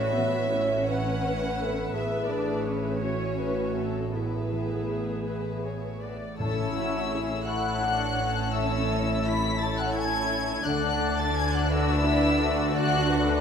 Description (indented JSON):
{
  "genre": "cinematic, emotional film score for orchestra",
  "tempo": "52-59 BPM (dotted quarters)",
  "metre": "6/8",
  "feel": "rubato",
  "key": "A major",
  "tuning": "A4 = 440 Hz",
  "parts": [
    { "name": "mellow hollow alto flute", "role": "melody", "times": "0.0-5.2 s", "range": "E4 to C#5", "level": "-31 LUFS", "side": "equal", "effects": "none" },
    { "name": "warm symphonic violin section", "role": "melody", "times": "0.0-13.4 s", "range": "B4 to B6", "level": "-34 LUFS", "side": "left 5 dB", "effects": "none" },
    { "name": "warm symphonic violin section", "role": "second line", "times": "0.0-13.4 s", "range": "F#4 to F#5", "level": "-34 LUFS", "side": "left 2 dB", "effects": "none" },
    { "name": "dark symphonic viola section", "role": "accompaniment", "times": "0.0-13.4 s", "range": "B3 to C#5", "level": "-31 LUFS", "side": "equal", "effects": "none" },
    { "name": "concert harp", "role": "arpeggios", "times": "0.0-13.4 s", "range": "A2 to C#6", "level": "-36 LUFS", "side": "left 4 dB", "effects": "none" },
    { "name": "rich symphonic double bass section", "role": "bass", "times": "0.0-13.4 s", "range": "A1 to D2", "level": "-32 LUFS", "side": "right 3 dB", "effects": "none" },
    { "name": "warm symphonic cello section", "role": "bass", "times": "0.0-13.4 s", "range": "A2 to D3", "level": "-34 LUFS", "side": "right 2 dB", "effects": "none" },
    { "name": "mellow large flute ensemble", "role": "second line", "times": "6.4-13.4 s", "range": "E5 to B5", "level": "-32 LUFS", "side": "left 2 dB", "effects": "none" },
    { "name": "warm French horn section", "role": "sustained chords", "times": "6.4-13.4 s", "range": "A3 to C#5", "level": "-34 LUFS", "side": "left 6 dB", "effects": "none" },
    { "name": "timpani", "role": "percussion", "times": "6.4-7.4 s", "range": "A2", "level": "-35 LUFS", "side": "left 2 dB", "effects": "none" }
  ],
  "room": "wet scoring stage reverb, RT60 1.5 s",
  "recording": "minimal, uncompressed stereo recording",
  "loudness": "-24 LUFS",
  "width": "side -7 dB against mid",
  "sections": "0.0-6.4 A section; 6.4-13.4 B section",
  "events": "none",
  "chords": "0.0 E/A; 6.4 A; 10.7 Dmaj7"
}